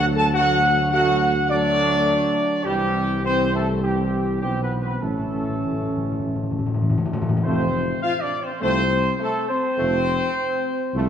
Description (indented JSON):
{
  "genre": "classical, ceremonial fanfare",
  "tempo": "103 BPM",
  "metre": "4/4",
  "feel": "straight",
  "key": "unclear",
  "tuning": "A4 = 438 Hz",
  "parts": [
    { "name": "dark trumpet section", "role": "melody", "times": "0.0-11.1 s", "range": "G4 to A5", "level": "-23 LUFS", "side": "equal", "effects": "none" },
    { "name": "mellow French horn section", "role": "sustained chords", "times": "0.0-11.1 s", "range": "G3 to A4", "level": "-26 LUFS", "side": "left 3 dB", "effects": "none" },
    { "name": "warm trombone section", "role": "sustained chords", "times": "0.0-11.1 s", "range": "E3 to C#4", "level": "-28 LUFS", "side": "right 3 dB", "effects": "none" },
    { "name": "dark tuba", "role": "bass", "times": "0.0-11.1 s", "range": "F1 to D2", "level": "-25 LUFS", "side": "right 2 dB", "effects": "none" },
    { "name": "timpani", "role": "percussion", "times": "5.0-7.4 s", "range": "A2", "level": "-24 LUFS", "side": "left 2 dB", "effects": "none" }
  ],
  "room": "wet scoring stage reverb, RT60 1.9 s",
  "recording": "none",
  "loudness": "-19 LUFS",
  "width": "side -8 dB against mid",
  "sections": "0.0-7.4 A section; 7.4-11.1 B section",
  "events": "timpani fill 5.0-7.4",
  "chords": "0.0 D; 2.7 C; 5.0 A; 7.4 F",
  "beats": "| 0.35 0.93 1.51 2.08 | 2.66 3.24 3.84 4.43 | 5.04 5.64 6.24 6.84 | 7.45 8.04 8.62 9.20 | 9.78 10.36 10.94"
}